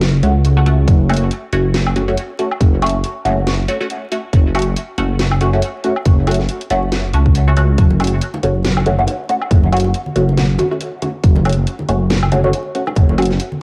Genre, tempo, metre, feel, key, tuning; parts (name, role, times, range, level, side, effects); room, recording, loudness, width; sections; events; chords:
deep dubstep; 139 BPM; 4/4; swing 57% on 16ths, half-time; F# minor; A4 = 440 Hz
dark detuned saw bass; bass; 0.0-13.4 s; F#1 to C#2; -17 LUFS; equal; tube saturation
garage drum kit; drums; 0.0-13.5 s; hi-hat, snare drum, woodblock; -26 LUFS; equal; studio reverb
filtered dub chord stab; stabs; 0.2-13.3 s; A3 to F#4; -22 LUFS; equal; phaser, lush chorus, cassette tape, dub echo
electronic kick drum; drums; 0.9-13.1 s; -14 LUFS; equal; studio reverb
congas and bongos; percussion; 7.9-13.6 s; -29 LUFS; equal
light reverb, digital ambience; home recording on cassette, vinyl crackle; -15 LUFS; mono
0.0-13.6 A section
0.0 F#m